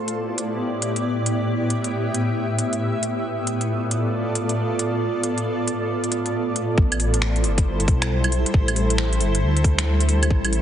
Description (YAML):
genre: future garage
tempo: 136 BPM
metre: 4/4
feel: swing 64% on 16ths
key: A minor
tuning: A4 = 442 Hz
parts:
  - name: granular cloud pad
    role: sustained chords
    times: 0.0-10.6 s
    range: A2 to E5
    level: -22 LUFS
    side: equal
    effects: built-in reverb, vintage 12-bit sampler grit, sidechain pumping
  - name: organic electronic drum kit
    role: drums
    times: 0.1-10.6 s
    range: claves, finger snaps, hi-hat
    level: -24 LUFS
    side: equal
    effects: none
  - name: dark detuned saw bass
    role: bass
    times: 6.8-10.6 s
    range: G1 to D2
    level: -21 LUFS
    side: equal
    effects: sidechain pumping
  - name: electronic kick drum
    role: drums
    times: 6.8-10.4 s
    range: none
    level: -19 LUFS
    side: equal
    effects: none
room: light reverb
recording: heavily compressed radio sound, multiband compression, nothing above 10.3 kHz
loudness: -20 LUFS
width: side -10 dB against mid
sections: 0.0-6.8 A section; 6.8-10.6 B section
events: none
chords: 0.0 Em7/A; 3.2 Bm7b5/A; 6.8 Am7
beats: 0.16 0.60 1.04 | 1.48 1.93 2.37 2.81 | 3.25 3.69 4.13 4.57 | 5.01 5.45 5.89 6.34 | 6.78 7.22 7.66 8.10 | 8.54 8.98 9.43 9.87 | 10.31